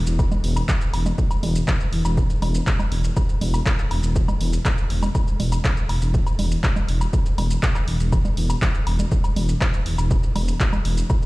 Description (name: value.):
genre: melodic techno.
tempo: 121 BPM.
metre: 4/4.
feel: straight.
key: unclear.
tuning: A4 = 436 Hz.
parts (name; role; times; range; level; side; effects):
dark detuned saw bass; bass; 0.0-11.0 s; E1; -21 LUFS; equal; sidechain pumping.
punchy analog drum machine; drums; 0.1-11.3 s; congas, handclaps, hi-hat, shaker, woodblock; -27 LUFS; equal; studio ambience.
electronic kick drum; drums; 0.2-11.2 s; none; -21 LUFS; equal; studio ambience.
room: digital ambience.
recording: played on a big sound system in a bare room, large studio reverb.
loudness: -19 LUFS.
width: side -20 dB against mid.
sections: 0.0-11.3 A section.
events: none.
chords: none.